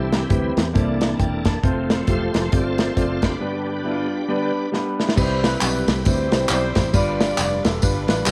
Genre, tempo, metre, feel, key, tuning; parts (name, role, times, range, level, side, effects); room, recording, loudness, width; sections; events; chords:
uptempo gospel; 136 BPM; 4/4; swing 59% on 8ths; C major; A4 = 440 Hz
warm concert grand piano; accompaniment; 0.0-8.3 s; G2 to A5; -27 LUFS; equal; cassette tape
bright tonewheel organ; sustained chords; 0.0-8.3 s; D3 to C5; -30 LUFS; equal; slow rotary speaker, chorus vibrato, cassette tape
fingered electric bass; bass; 0.0-8.3 s; E1 to E2; -28 LUFS; equal
warm soul drum kit; drums; 0.1-8.3 s; crash cymbal, hi-hat, kick drum, ride cymbal, snare drum; -24 LUFS; equal; cassette tape
mellow saxophone section; melody; 5.2-8.3 s; D4 to D5; -27 LUFS; equal; cassette tape, analog delay
tambourine and handclaps; percussion; 5.2-8.3 s; -29 LUFS; equal
moderate spring reverb, RT60 2.1 s; home recording on cassette; -21 LUFS; mono
0.0-5.2 A section; 5.2-8.3 B section
tonewheel organ solo 0.0-5.2; break 3.4-5.2; drum fill 4.7-5.2
0.0 C; 0.8 C13; 1.6 F; 3.4 G; 5.2 Cmaj7; 6.9 G7